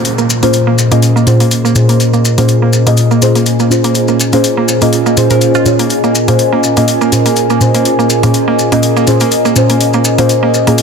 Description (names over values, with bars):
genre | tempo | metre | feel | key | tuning
deep house | 123 BPM | 4/4 | swing 55% on 16ths | Bb minor | A4 = 440 Hz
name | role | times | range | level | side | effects
soft string machine | sustained chords | 0.0-10.8 s | Bb2 to C5 | -15 LUFS | left 2 dB | ensemble chorus
deep mellow chord stab | stabs | 0.0-10.8 s | Bb2 to Eb5 | -11 LUFS | equal | chorus, phaser, analog delay
electronic hi-hat | drums | 0.0-10.8 s | none | -18 LUFS | left 4 dB | overdrive
downlifter | sound effects | 0.0-2.0 s | none | -27 LUFS | left 1 dB | none
deep dark ambient pad | texture | 0.0-10.8 s | Bb4 to Ab5 | -18 LUFS | right 1 dB | chorus, built-in reverb
maracas | percussion | 0.1-10.8 s | none | -20 LUFS | left 3 dB | none
mallet-like synth pluck | arpeggios | 0.2-10.7 s | Bb3 to Bb4 | -17 LUFS | right 6 dB | chorus, analog delay
room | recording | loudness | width
moderate plate reverb, RT60 2.2 s | dense, heavily limited modern master | -8 LUFS | side -6 dB against mid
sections
0.0-10.8 A section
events
filter sweep on string machine 0.0-10.8; filter sweep on synth arpeggio sound 0.0-10.8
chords
0.0 Bbm9